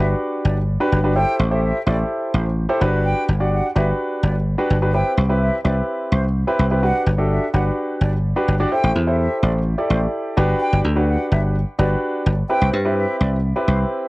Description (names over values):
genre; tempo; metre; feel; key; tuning
dance-pop; 127 BPM; 4/4; straight; G major; A4 = 443 Hz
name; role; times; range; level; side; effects
bright silver concert flute; melody; 0.0-13.8 s; C5 to G5; -27 LUFS; equal; cassette tape, analog delay
warm concert grand piano; accompaniment; 0.0-14.1 s; C4 to D5; -21 LUFS; equal; cassette tape
dry thumbed slap bass; bass; 0.0-13.8 s; G1 to G2; -18 LUFS; equal; none
room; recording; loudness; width
light reverb; home recording on cassette; -17 LUFS; side -21 dB against mid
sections
0.0-8.7 A section; 8.7-14.1 B section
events
none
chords
0.0 Gmaj7; 1.2 Am7; 2.8 Gmaj7; 4.9 Cmaj7; 6.8 Gmaj7; 8.7 Am7; 10.4 Gmaj7; 12.5 Cmaj7